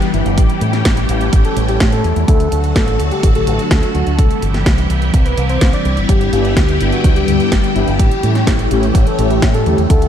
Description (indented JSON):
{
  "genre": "italo disco",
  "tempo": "126 BPM",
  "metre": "4/4",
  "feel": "straight",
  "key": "unclear",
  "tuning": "A4 = 436 Hz",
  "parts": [
    { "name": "soft octave-layered synth lead", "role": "melody", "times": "0.0-10.1 s", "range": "E4 to D5", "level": "-22 LUFS", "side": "left 1 dB", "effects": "chorus, ping-pong delay" },
    { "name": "phased string machine", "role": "sustained chords", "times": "0.0-10.1 s", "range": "C3 to A4", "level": "-19 LUFS", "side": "left 1 dB", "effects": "ensemble chorus, phaser" },
    { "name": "house drum kit", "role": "drums", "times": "0.0-10.1 s", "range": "hi-hat, snare drum", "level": "-22 LUFS", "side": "right 1 dB", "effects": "none" },
    { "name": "fingered electric bass with an envelope filter", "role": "bass", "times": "0.1-10.1 s", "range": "G1 to A2", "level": "-17 LUFS", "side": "equal", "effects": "none" },
    { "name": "electronic kick drum", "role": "drums", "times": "0.4-10.0 s", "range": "none", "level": "-13 LUFS", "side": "equal", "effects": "none" },
    { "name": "mellow synth brass", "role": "stabs", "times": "6.3-9.8 s", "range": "G2 to G4", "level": "-19 LUFS", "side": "left 1 dB", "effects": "chorus" }
  ],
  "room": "light reverb, digital ambience",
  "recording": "none",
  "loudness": "-11 LUFS",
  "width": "side -9 dB against mid",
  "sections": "0.0-10.1 A section",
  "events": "none",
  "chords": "0.4 A7; 2.3 D; 4.2 C; 6.1 G6; 8.0 A7"
}